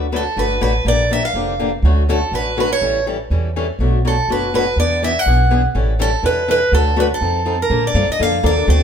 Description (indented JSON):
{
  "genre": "acoustic string swing (jazz manouche)",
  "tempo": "245 BPM",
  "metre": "4/4",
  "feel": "swing 55% on 8ths",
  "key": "D major",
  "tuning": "A4 = 440 Hz",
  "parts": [
    { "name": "picked swing-style acoustic guitar", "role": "accompaniment", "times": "0.0-8.8 s", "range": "B2 to B4", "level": "-21 LUFS", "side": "left 4 dB", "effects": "none" },
    { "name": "upright bass", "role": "bass", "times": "0.0-8.8 s", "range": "F1 to Bb2", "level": "-18 LUFS", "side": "right 1 dB", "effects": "none" },
    { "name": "picked steel-string acoustic guitar", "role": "melody", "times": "0.2-8.8 s", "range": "A4 to F#5", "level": "-18 LUFS", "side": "right 2 dB", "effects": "none" }
  ],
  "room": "moderate studio reverb, RT60 0.8 s",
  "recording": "band playing live in one room",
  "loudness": "-14 LUFS",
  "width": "side -8 dB against mid",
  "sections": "0.0-7.7 A section; 7.7-8.8 B section",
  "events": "none",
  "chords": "0.0 D6; 0.9 Bb6; 1.8 Dmaj7; 2.8 A7; 3.8 Bm7; 4.8 E7; 5.8 A7; 6.7 D6; 7.2 F7; 7.7 Bbmaj7",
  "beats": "0.12 0.37 0.61 | 0.86 1.10 1.35 1.59 | 1.84 2.08 2.33 2.57 | 2.81 3.06 3.30 3.55 | 3.79 4.04 4.28 4.53 | 4.77 5.02 5.26 5.51 | 5.75 6.00 6.24 6.49 | 6.73 6.97 7.22 7.46 | 7.71 7.95 8.20 8.44 | 8.68"
}